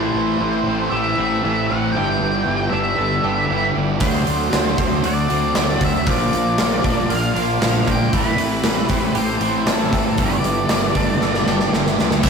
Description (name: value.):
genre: rock, shoegaze and dream pop.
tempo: 117 BPM.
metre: 4/4.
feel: straight.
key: unclear.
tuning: A4 = 441 Hz.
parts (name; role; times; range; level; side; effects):
octave-fuzz lead guitar; melody; 0.0-12.3 s; A4 to G5; -23 LUFS; equal; distortion.
hollow soft pad; sustained chords; 0.0-12.3 s; C4 to A5; -32 LUFS; right 1 dB; none.
direct-recorded clean electric guitar; arpeggios; 0.0-12.3 s; E3 to A4; -26 LUFS; right 5 dB; none.
biting overdriven guitar; riff; 0.0-12.3 s; G2 to G4; -29 LUFS; right 6 dB; none.
cranked stack guitar; riff; 0.0-12.3 s; G2 to D4; -26 LUFS; right 1 dB; overdrive.
thick fuzz guitar; riff; 0.0-12.3 s; G2 to D4; -25 LUFS; left 5 dB; distortion.
fuzz fingered electric bass; bass; 0.0-12.3 s; G1 to D2; -24 LUFS; equal; overdrive.
gated 80s drum kit; drums; 4.0-12.3 s; crash cymbal, hi-hat, kick drum, snare drum; -20 LUFS; equal; none.
room: wet stone room reverb, RT60 1.2 s.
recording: rough rehearsal-room recording, warm saturation.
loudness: -16 LUFS.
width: side -6 dB against mid.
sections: 0.0-12.3 A section.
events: drum fill 11.2-12.3.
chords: 0.0 Am7; 2.0 G69; 4.0 D7; 6.1 Bbmaj7; 8.1 Am7; 10.2 G69.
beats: 0.41 0.92 1.44 | 1.96 2.47 2.99 3.50 | 4.02 4.54 5.05 5.56 | 6.08 6.59 7.11 7.62 | 8.14 8.65 9.16 9.68 | 10.19 10.71 11.22 11.74 | 12.25.